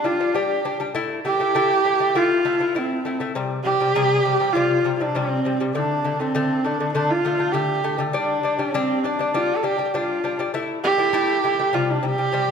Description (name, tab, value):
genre	mongolian traditional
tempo	100 BPM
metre	4/4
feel	straight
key	C zhi mode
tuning	A4 = 441 Hz
part	clear horsehead fiddle	melody	0.0-12.5 s	C4 to A4	-20 LUFS	right 2 dB	none
part	lute	arpeggios	0.0-12.5 s	C3 to E4	-24 LUFS	left 4 dB	none
room	wet scoring stage reverb, RT60 1.6 s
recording	none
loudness	-19 LUFS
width	side -6 dB against mid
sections	0.0-12.5 A section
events	none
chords	0.0 G5; 0.9 A5; 3.3 C5; 5.7 D5; 8.1 G5; 10.5 A5; 11.7 C5